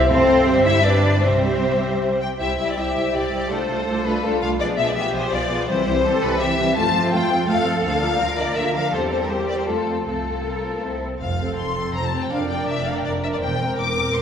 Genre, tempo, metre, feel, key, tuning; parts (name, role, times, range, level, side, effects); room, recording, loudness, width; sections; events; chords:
quick classical-period movement for string orchestra; 164 BPM; 3/4; rubato; C major, F major from 6.8 s; A4 = 440 Hz
warm symphonic violin section; second line; 0.0-14.2 s; A3 to F5; -26 LUFS; left 1 dB
warm symphonic viola section; accompaniment; 0.0-14.2 s; D3 to Bb4; -26 LUFS; right 1 dB
clear studio double bass section; bass; 0.0-14.2 s; E1 to F2; -27 LUFS; right 2 dB
warm symphonic violin section; melody; 0.1-14.2 s; A4 to D6; -23 LUFS; left 5 dB
rich symphonic cello section; bass; 0.1-14.2 s; E2 to Bb4; -25 LUFS; right 2 dB
wet scoring stage reverb, RT60 1.7 s; heard from further back in the room; -18 LUFS; side -8 dB against mid
0.0-2.4 A section; 2.4-11.2 A section; 11.2-14.2 B section
0.1 F; 0.5 C/G; 0.8 G; 1.2 C; 3.5 Dm7/C; 4.6 Bdim7; 5.7 C; 6.8 F; 7.8 Bb/D; 8.9 C7/E; 9.7 F; 10.1 F/C; 10.8 C; 11.2 F; 12.3 Bb6/F; 13.4 C7/E